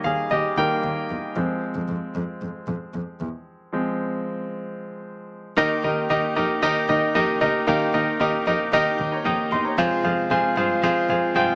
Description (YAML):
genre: pop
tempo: 114 BPM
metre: 4/4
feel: straight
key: unclear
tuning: A4 = 436 Hz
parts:
  - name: clear concert grand piano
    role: accompaniment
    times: 0.0-11.6 s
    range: Eb3 to Eb6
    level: -24 LUFS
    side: equal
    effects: none
  - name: warm double bass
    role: bass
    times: 0.0-11.4 s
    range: D2 to G2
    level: -33 LUFS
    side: equal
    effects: none
  - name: direct-recorded clean electric guitar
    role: riff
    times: 5.6-11.6 s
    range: F2 to G4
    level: -28 LUFS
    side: equal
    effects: vibrato effect
room: light reverb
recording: small speaker sound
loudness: -23 LUFS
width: mono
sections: 0.0-5.6 A section; 5.6-11.6 B section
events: grand piano solo 0.0-5.6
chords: 0.0 Eb; 1.4 Fm; 5.6 Eb; 9.8 Fm